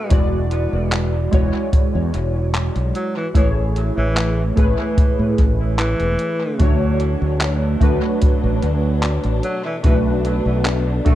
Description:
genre	vaporwave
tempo	74 BPM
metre	4/4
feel	straight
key	A major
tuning	A4 = 440 Hz
part	breathy tenor saxophone	melody	0.0-11.2 s	E3 to B3	-27 LUFS	equal	tape echo
part	warbly lo-fi synth keys	accompaniment	0.0-11.2 s	G#3 to D5	-22 LUFS	right 1 dB	wide subtle chorus, dub echo
part	fretless electric bass	bass	0.1-11.2 s	E1 to A2	-20 LUFS	equal	none
part	detuned 8-bit digital drum machine	drums	0.1-11.2 s	handclaps, hi-hat	-28 LUFS	equal	studio reverb, dub echo
part	kick drum	drums	0.1-11.2 s	none	-16 LUFS	equal	studio reverb
part	warm studio string section	sustained chords	6.6-11.2 s	B2 to D4	-30 LUFS	left 2 dB	vintage 12-bit sampler grit
room	light reverb, studio reverb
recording	echo-heavy mix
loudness	-16 LUFS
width	side -13 dB against mid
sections	0.0-11.2 A section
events	none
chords	0.1 E9; 3.4 Amaj7; 6.6 Dmaj7; 9.4 Bm7

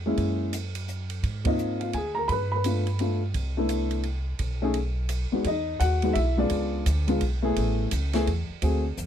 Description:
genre	jazz piano trio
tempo	171 BPM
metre	3/4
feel	swing 63% on 8ths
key	E major from 5.5 s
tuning	A4 = 440 Hz
part	upright bass	bass	0.0-9.1 s	A1 to Ab2	-27 LUFS	right 1 dB	none
part	dark upright piano	melody	0.1-8.8 s	E2 to B5	-26 LUFS	left 2 dB	none
part	compact cocktail drum kit	drums	0.2-9.1 s	hi-hat, kick drum, ride cymbal, snare drum	-35 LUFS	right 3 dB	none
room	little or no reverb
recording	close, detailed microphones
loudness	-24 LUFS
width	side -9 dB against mid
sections	0.0-5.5 A section; 5.5-9.1 B section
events	band accent 1.4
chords	0.2 F#9; 1.2 Ab6; 2.3 G7; 3.4 Cmaj13; 4.4 B6; 5.5 Emaj9; 6.5 C#7b9; 7.6 Amaj9

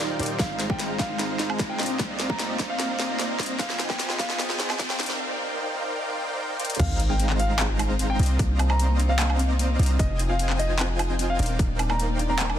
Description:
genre	future bass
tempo	150 BPM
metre	4/4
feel	half-time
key	C minor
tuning	A4 = 440 Hz
part	warm grand piano	melody	0.0-12.6 s	Eb5 to Bb5	-33 LUFS	right 1 dB	sidechain pumping, dub echo
part	rich studio string section	sustained chords	0.0-12.6 s	C3 to D5	-38 LUFS	right 1 dB	none
part	dense compressed supersaw	riff	0.0-12.6 s	Ab3 to Bb5	-30 LUFS	right 1 dB	vintage 12-bit sampler grit, sidechain pumping, digital delay
part	warm 808-style bass	bass	0.0-12.6 s	Eb1 to C2	-24 LUFS	equal	sidechain pumping
part	riser and sub drop	sound effects	0.0-8.4 s	none	-33 LUFS	equal	none
part	dubstep drum kit	drums	0.2-12.6 s	crash cymbal, handclaps, hi-hat, snare drum, woodblock	-29 LUFS	equal	soft clipping on snare, high-pass filter on snare, studio reverb, high-pass filter on hats, high-pass filter on perc, high-pass filter on cymbals
part	thumb-piano-like synth pluck	arpeggios	0.4-12.5 s	Bb3 to F4	-36 LUFS	left 5 dB	chorus, sidechain pumping, digital delay
part	electronic kick drum	drums	0.4-11.7 s	none	-27 LUFS	equal	overdrive, studio reverb
room	light reverb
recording	dense, heavily limited modern master, high-pass filter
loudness	-22 LUFS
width	side -10 dB against mid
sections	0.0-6.8 A section; 6.8-12.6 B section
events	build-up 0.0-6.8; drum fill 0.0-5.2, 6.6; riser 0.0-5.2; filter sweep on supersaw synth 0.0-6.8; break 5.2-6.8; drop 6.8-12.6; impact 6.8-8.4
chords	0.4 Ab6; 1.8 Cm11; 3.6 Fm9; 5.0 Ebmaj13; 6.8 Ab6; 8.2 Cm11; 10.0 Fm9; 11.4 Ebmaj13

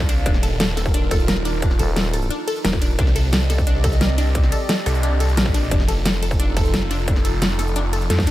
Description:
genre	dark technical drum and bass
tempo	176 BPM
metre	4/4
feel	straight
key	unclear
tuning	A4 = 440 Hz
part	dark analog pad	sustained chords	0.0-8.3 s	C4 to F5	-29 LUFS	right 1 dB	chorus, vintage 12-bit sampler grit, sidechain pumping
part	snarling distorted saw bass	bass	0.0-8.3 s	Eb1 to F2	-20 LUFS	equal	distortion, sidechain pumping
part	electronic kick drum	drums	0.0-8.3 s	none	-20 LUFS	equal	distortion
part	wide unison pluck	arpeggios	0.1-8.3 s	D4 to Bb4	-28 LUFS	left 3 dB	sidechain pumping, ping-pong delay
part	dubstep drum kit	drums	0.1-8.3 s	hi-hat, ride cymbal, shaker, snare drum	-24 LUFS	equal	none
part	growling FM bass	bass	1.8-2.3 s	Eb1	-21 LUFS	equal	none
room	little or no reverb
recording	none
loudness	-17 LUFS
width	side -15 dB against mid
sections	0.0-8.3 A section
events	drum fill 8.1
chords	0.3 Ebsus2; 3.0 Cmadd9; 5.7 F7

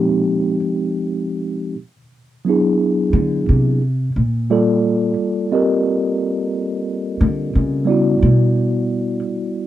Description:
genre	jazz ballad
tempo	59 BPM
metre	4/4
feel	swing 69% on 8ths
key	unclear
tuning	A4 = 439 Hz
part	tine electric piano	accompaniment	0.0-9.7 s	F3 to Eb5	-17 LUFS	equal	medium stereo tremolo
part	upright bass	bass	0.0-9.2 s	Bb2 to D3	-17 LUFS	equal	none
room	little or no reverb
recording	dry, close 1970s-style studio recording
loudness	-16 LUFS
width	side -12 dB against mid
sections	0.0-9.7 A section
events	upright bass solo 0.0-9.7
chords	0.0 Fm7; 1.7 E9; 3.8 Ebmaj9#11; 7.9 Em9

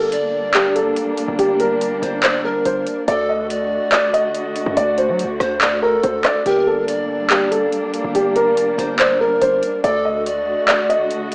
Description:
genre	hip hop, trap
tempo	142 BPM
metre	4/4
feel	half-time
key	G harmonic minor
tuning	A4 = 440 Hz
part	dark grand piano	melody	0.0-11.3 s	G4 to Eb5	-20 LUFS	equal	low-pass filter, cassette tape
part	breathy bright pan flute	second line	0.0-11.1 s	A4 to D5	-26 LUFS	equal	tape echo
part	dark chamber string section	sustained chords	0.0-11.3 s	D3 to F#4	-28 LUFS	equal	none
part	hard-hitting 808-style bass	bass	0.0-10.5 s	G1 to F#3	-32 LUFS	equal	none
part	trap drum kit	drums	0.1-11.3 s	handclaps, hi-hat, rim click	-22 LUFS	equal	overdrive, cassette tape
room	moderate spring reverb, RT60 1.4 s, studio reverb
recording	home recording on cassette, small speaker sound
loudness	-18 LUFS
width	mono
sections	0.0-11.3 A section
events	none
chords	0.0 Gm; 3.1 D; 6.5 Gm; 9.8 D

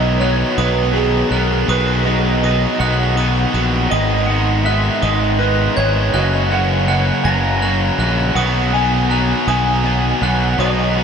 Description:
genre	post-rock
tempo	54 BPM (dotted quarters)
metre	6/8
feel	straight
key	B major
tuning	A4 = 440 Hz
part	electric slide guitar	melody	0.0-11.0 s	G#4 to A#5	-20 LUFS	right 2 dB	analog chorus, tape echo
part	pedal steel guitar	sustained chords	0.0-11.0 s	C#3 to D#5	-29 LUFS	right 2 dB	none
part	glockenspiel with brass mallets	arpeggios	0.0-11.0 s	D#6 to A#6	-26 LUFS	right 5 dB	tape echo
part	overdriven semi-hollow guitar	riff	0.0-11.0 s	F#2 to D#4	-21 LUFS	left 9 dB	none
part	tight distorted guitar	riff	0.0-11.0 s	F#2 to B3	-22 LUFS	right 9 dB	distortion
part	growling fingered electric bass	bass	0.0-11.0 s	F#1 to B1	-18 LUFS	equal	overdrive
room	wet huge ambient reverb, RT60 7.5 s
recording	dreamy mix soaked in reverb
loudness	-14 LUFS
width	side -6 dB against mid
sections	0.0-11.0 A section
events	none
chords	0.0 B; 3.9 G#m; 6.1 F#; 8.4 B

